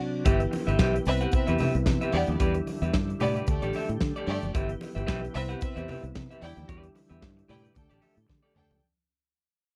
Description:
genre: disco.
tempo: 112 BPM.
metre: 4/4.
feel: swing 56% on 16ths.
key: G major.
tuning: A4 = 438 Hz.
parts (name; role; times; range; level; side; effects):
tonewheel organ; sustained chords; 0.0-8.8 s; C3 to G4; -37 LUFS; equal; chorus vibrato, slow rotary speaker.
semi-hollow electric guitar; accompaniment; 0.2-8.7 s; G4 to F#5; -35 LUFS; equal; none.
fingered electric bass; bass; 0.3-8.8 s; F#1 to D3; -32 LUFS; equal; none.
modern studio drum kit; drums; 0.3-8.8 s; hi-hat, kick drum, snare drum, toms; -30 LUFS; equal; none.
congas; percussion; 0.5-8.8 s; none; -38 LUFS; equal; none.
rich studio violin section; second line; 1.1-8.8 s; A3 to G5; -35 LUFS; equal; none.
room: little or no reverb.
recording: dry, close 1970s-style studio recording.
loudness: -27 LUFS.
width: mono.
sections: 0.3-8.8 A section.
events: band accent 0.0; fade-out 0.3-8.8; drum fill 8.3-8.8.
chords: 0.3 G6; 1.1 Cmaj7; 2.1 Em7; 3.5 Dsus4; 4.5 G6; 5.3 Cmaj7; 6.4 Em7; 7.8 Dsus4.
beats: | 0.26 0.79 1.33 1.87 | 2.40 2.94 3.47 4.01 | 4.54 5.08 5.62 6.15 | 6.69 7.22 7.76 8.29.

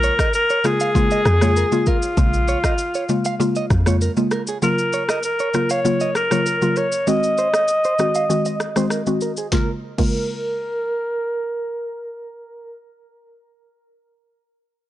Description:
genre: afrobeats.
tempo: 98 BPM.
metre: 4/4.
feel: straight.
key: Bb minor.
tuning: A4 = 440 Hz.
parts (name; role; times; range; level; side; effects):
breathy alto saxophone; melody; 0.0-12.7 s; F4 to Eb5; -21 LUFS; equal; low-pass filter, analog delay.
mallet-like synth pluck; accompaniment; 0.0-13.4 s; Db3 to Gb4; -21 LUFS; left 1 dB; chorus, phaser, low-pass filter.
direct-recorded clean electric guitar; riff; 0.0-11.3 s; Ab4 to F5; -28 LUFS; right 5 dB; low-pass filter, analog delay.
deep log drum bass; bass; 0.0-4.1 s; Bb1 to F2; -18 LUFS; equal; none.
afro-pop drum kit; drums; 0.0-10.2 s; crash cymbal, kick drum, rim click, shaker, snare drum; -23 LUFS; equal; none.
room: digital ambience.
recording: dry, gritty hardware recording, cassette tape, nothing above 10.3 kHz.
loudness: -17 LUFS.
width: side -14 dB against mid.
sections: 0.0-9.5 A section; 9.5-12.0 B section.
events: filter sweep 0.0-9.5.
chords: 0.0 Bbm7; 4.6 Gbmaj7; 7.1 Ab7; 9.5 Bbm7.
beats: 0.34 0.95 1.56 | 2.17 2.79 3.40 4.01 | 4.62 5.24 5.85 6.46 | 7.07 7.68 8.30 8.91 | 9.52 10.13 10.74 11.36.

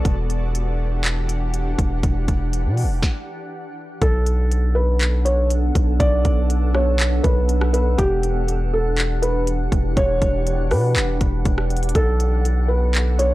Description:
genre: hip hop, atmospheric cloud-rap.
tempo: 121 BPM.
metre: 4/4.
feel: half-time.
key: B minor.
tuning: A4 = 438 Hz.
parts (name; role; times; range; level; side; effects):
long sustained 808-style bass; bass; 0.0-13.3 s; E1 to B2; -20 LUFS; equal; none.
shimmering ambient pad; sustained chords; 0.1-13.3 s; E3 to F#5; -28 LUFS; equal; chorus, built-in reverb, sidechain pumping.
trap drum kit; drums; 0.1-13.3 s; handclaps, hi-hat, kick drum, rim click, snare drum; -22 LUFS; equal; none.
felt-muted upright piano; melody; 4.0-13.3 s; G4 to D5; -23 LUFS; equal; low-pass filter, analog delay.
room: little or no reverb.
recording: dry, gritty hardware recording, cassette tape.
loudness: -17 LUFS.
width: side -17 dB against mid.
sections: 0.0-4.0 A section; 4.0-13.3 B section.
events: stop 3.0-4.0.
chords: 0.1 Em9; 4.0 Bm7; 8.0 Em9; 12.0 Bm7.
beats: | 0.05 0.55 1.04 1.54 | 2.03 2.53 3.02 3.52 | 4.02 4.51 5.01 5.50 | 6.00 6.50 6.99 7.49 | 7.98 8.48 8.98 9.47 | 9.97 10.46 10.96 11.46 | 11.95 12.45 12.94.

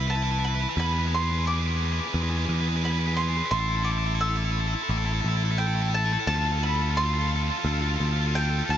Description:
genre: post-rock.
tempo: 87 BPM.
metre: 4/4.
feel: straight.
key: unclear.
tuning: A4 = 440 Hz.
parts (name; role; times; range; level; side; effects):
thick fuzz guitar; riff; 0.0-8.8 s; E4 to B4; -28 LUFS; equal; distortion.
picked electric bass; bass; 0.0-8.8 s; A1 to E2; -26 LUFS; equal; none.
mandolin; melody; 0.1-8.8 s; G5 to E6; -30 LUFS; right 1 dB; digital delay.
room: light reverb, studio ambience.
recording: nothing above 7.7 kHz.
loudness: -23 LUFS.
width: side -10 dB against mid.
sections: 0.0-8.8 A section.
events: build-up 0.0-8.8.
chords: 0.0 Cmaj7; 0.8 E; 3.5 A5; 6.3 Dm.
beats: 0.10 | 0.78 1.47 2.16 2.85 | 3.53 4.22 4.91 5.60 | 6.29 6.97 7.66 8.35.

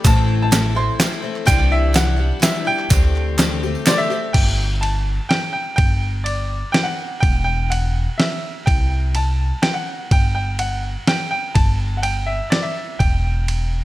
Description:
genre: indie folk with a building arrangement.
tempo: 125 BPM.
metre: 3/4.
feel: straight.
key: unclear.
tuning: A4 = 440 Hz.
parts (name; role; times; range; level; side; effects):
bright upright piano; melody; 0.0-13.8 s; C5 to C6; -23 LUFS; right 1 dB; tape echo.
picked twelve-string acoustic guitar; accompaniment; 0.0-4.4 s; A2 to G4; -24 LUFS; left 6 dB; none.
upright bass; bass; 0.0-13.8 s; E1 to D2; -20 LUFS; equal; none.
dusty soul sampler-style drum kit; drums; 0.0-13.6 s; crash cymbal, hi-hat, kick drum, ride cymbal, snare drum; -19 LUFS; equal; none.
group handclap; percussion; 0.1-4.2 s; none; -27 LUFS; right 3 dB; none.
tambourine; percussion; 0.1-4.2 s; none; -31 LUFS; right 8 dB; none.
room: light reverb, studio reverb.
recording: none.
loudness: -16 LUFS.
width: side -16 dB against mid.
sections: 0.0-4.4 A section; 4.4-13.8 B section.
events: none.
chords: 0.1 Am; 1.5 Cadd9; 2.9 D7sus4; 4.4 G5; 7.2 Emadd9; 8.7 C5; 10.1 Em/G; 13.0 Em.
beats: | 0.05 0.53 1.01 | 1.49 1.96 2.44 | 2.92 3.40 3.87 | 4.35 4.83 5.31 | 5.79 6.27 6.75 | 7.23 7.71 8.19 | 8.68 9.16 9.64 | 10.12 10.60 11.08 | 11.56 12.04 12.52 | 13.01 13.49.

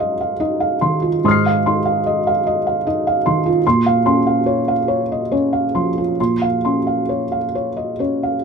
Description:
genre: neoclassical minimalist piano.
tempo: 44-51 BPM (dotted quarters).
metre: 6/8.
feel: rubato.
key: unclear.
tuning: A4 = 441 Hz.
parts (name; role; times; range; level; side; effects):
felt-muted upright piano; solo; 0.0-8.4 s; Ab2 to C7; -15 LUFS; right 1 dB; none.
room: light reverb.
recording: minimal, uncompressed stereo recording.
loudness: -15 LUFS.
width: side -5 dB against mid.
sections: 0.0-8.4 A section.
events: none.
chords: 0.0 Fm7/Ab; 3.6 Bbmadd9.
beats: 0.01 | 1.24 2.45 | 3.64 4.87 | 6.18 7.53.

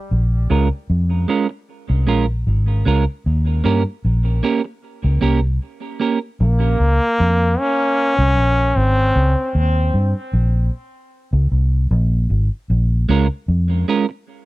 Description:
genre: dub reggae.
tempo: 76 BPM.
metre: 4/4.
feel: straight.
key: Bb dorian.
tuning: A4 = 440 Hz.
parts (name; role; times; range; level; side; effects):
vintage muted fingered electric bass; bass; 0.1-13.8 s; Ab1 to G2; -16 LUFS; equal; none.
clean electric guitar; accompaniment; 0.5-6.2, 13.1-14.1 s; Ab3 to Bb4; -20 LUFS; right 6 dB; low-pass filter, tape echo.
brilliant trombone; melody; 6.4-9.6 s; Bb3 to Db4; -18 LUFS; equal; low-pass filter, tape echo.
room: little or no reverb.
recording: dry, close 1970s-style studio recording.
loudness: -15 LUFS.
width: side -18 dB against mid.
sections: 0.0-6.4 A section; 6.4-14.5 B section.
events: break 5.6-6.4.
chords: 0.1 Bbm7; 3.3 Eb7 (rootless); 6.4 Bbm7; 9.5 Eb5; 12.7 Bbm7.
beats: | 0.10 0.89 1.68 2.47 | 3.25 4.04 4.83 5.62 | 6.40 7.19 7.97 8.76 | 9.55 10.33 11.12 11.90 | 12.69 13.48.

